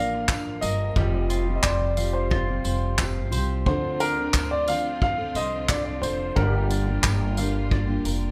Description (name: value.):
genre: acoustic pop.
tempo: 89 BPM.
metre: 4/4.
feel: straight.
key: unclear.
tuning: A4 = 440 Hz.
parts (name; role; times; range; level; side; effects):
warm upright piano; melody; 0.0-7.7 s; Bb4 to F5; -30 LUFS; equal; plate reverb, delay.
fingerpicked steel-string acoustic guitar; accompaniment; 0.0-8.3 s; G2 to Bb4; -33 LUFS; equal; none.
clear studio string section; sustained chords; 0.0-8.3 s; C3 to F4; -40 LUFS; equal; none.
mandolin; arpeggios; 0.0-8.3 s; G3 to F5; -39 LUFS; equal; none.
upright bass; bass; 0.0-8.3 s; F1 to D2; -29 LUFS; equal; none.
soft brush drum kit; drums; 0.3-8.2 s; handclaps, kick drum, tambourine; -28 LUFS; equal; none.
tambourine; percussion; 0.3-7.2 s; none; -46 LUFS; equal; none.
room: light reverb.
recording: none.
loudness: -24 LUFS.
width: mono.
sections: 0.0-8.3 A section.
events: none.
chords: 0.0 Bb; 1.0 Fsus2; 3.7 Dm7; 6.4 Gm7.